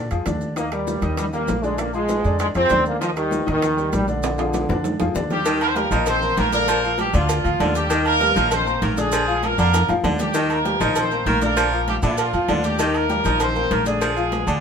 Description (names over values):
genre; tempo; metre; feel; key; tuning
latin, salsa; 196 BPM; 4/4; straight; Eb major; A4 = 441 Hz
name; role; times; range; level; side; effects
bright upright piano; accompaniment; 0.0-14.6 s; D3 to D6; -25 LUFS; left 3 dB; none
upright bass; bass; 0.0-14.6 s; Bb1 to Bb2; -25 LUFS; equal; none
bongos and cowbell; percussion; 0.1-14.5 s; none; -30 LUFS; left 4 dB; none
congas; percussion; 0.1-14.6 s; none; -31 LUFS; right 1 dB; none
maracas; percussion; 0.1-14.6 s; none; -36 LUFS; right 4 dB; none
timbales and agogo bells; percussion; 0.1-14.6 s; none; -29 LUFS; right 6 dB; none
bright trombone section; melody; 0.6-5.1 s; D3 to C4; -22 LUFS; right 1 dB; none
warm horn section; melody; 5.3-14.6 s; F3 to C5; -22 LUFS; right 1 dB; none
bright baritone saxophone; second line; 5.5-14.6 s; D3 to F3; -27 LUFS; equal; none
room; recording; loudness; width
moderate studio reverb, RT60 0.9 s; minimal, uncompressed stereo recording; -18 LUFS; side -6 dB against mid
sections
0.0-5.5 A section; 5.5-14.6 B section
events
drum fill 4.2-5.5, 9.7-10.3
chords
0.0 Bb7; 0.6 Eb; 1.8 Bb7; 3.0 Eb; 4.2 Bb7; 5.5 Eb; 6.7 Bb; 7.9 Eb; 9.1 Bb7; 10.3 Eb; 11.6 Bb; 12.8 Eb; 14.0 Bb7